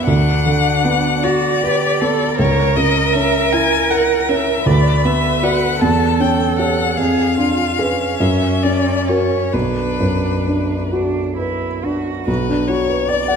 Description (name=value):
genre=classical, slow romantic movement for piano trio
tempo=43-54 BPM (dotted quarters)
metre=6/8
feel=rubato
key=B minor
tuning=A4 = 441 Hz
part: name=rich violin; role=melody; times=0.0-13.4 s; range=B4 to A5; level=-20 LUFS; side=left 7 dB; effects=none
part: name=rich cello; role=second line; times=0.0-12.3 s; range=C#4 to B4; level=-21 LUFS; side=right 6 dB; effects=none
part: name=dark grand piano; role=accompaniment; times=0.0-13.4 s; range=B1 to F#5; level=-17 LUFS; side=equal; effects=none
room=wet scoring stage reverb, RT60 1.9 s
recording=none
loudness=-14 LUFS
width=side -6 dB against mid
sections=0.0-12.3 A section; 12.3-13.4 A section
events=none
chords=0.1 Bm/D; 2.4 A#dim/C#; 4.7 Bm/D; 5.8 C#dim/E; 7.0 Fdim7; 8.2 F#; 9.5 Bm